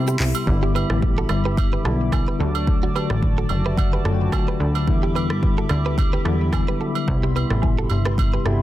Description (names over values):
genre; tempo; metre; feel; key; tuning
afrobeats; 109 BPM; 4/4; swing 55% on 16ths; unclear; A4 = 440 Hz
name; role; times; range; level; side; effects
bright tine electric piano; accompaniment; 0.0-8.6 s; C3 to B5; -25 LUFS; left 3 dB; medium stereo tremolo
hollow soft pad; sustained chords; 0.0-8.6 s; F#4 to D6; -32 LUFS; right 1 dB; chorus, sidechain pumping
plucky analog bass; bass; 0.0-8.6 s; F#1 to C3; -22 LUFS; equal; none
direct-recorded clean electric guitar; riff; 0.1-8.6 s; D4 to B4; -30 LUFS; right 6 dB; ping-pong delay
afro-pop drum kit; drums; 0.1-8.6 s; handclaps, hi-hat, kick drum, rim click, shaker; -22 LUFS; equal; soft clipping on snare
agogo bells and woodblock; percussion; 0.3-8.3 s; none; -32 LUFS; right 9 dB; none
room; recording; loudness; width
digital ambience; dense, heavily limited modern master; -18 LUFS; side -14 dB against mid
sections
0.5-8.6 A section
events
break 0.0-0.5; hi-hats muted 0.5-8.6; tine electric piano fill 3.2-4.9, 8.2-8.6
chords
0.5 G6; 2.4 D; 4.9 Em7; 7.1 Cmaj7